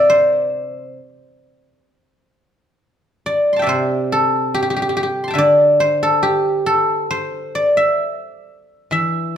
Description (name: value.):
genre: chinese traditional, Chinese solo plucked strings.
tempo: 64-70 BPM.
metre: 2/4.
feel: rubato.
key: C gong mode.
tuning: A4 = 440 Hz.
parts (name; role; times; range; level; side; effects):
guzheng; solo; 0.0-9.4 s; C3 to C6; -14 LUFS; equal; none.
room: light reverb.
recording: none.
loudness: -15 LUFS.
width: side -9 dB against mid.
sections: 0.0-1.9 A section; 1.9-9.4 B section.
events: none.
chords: none.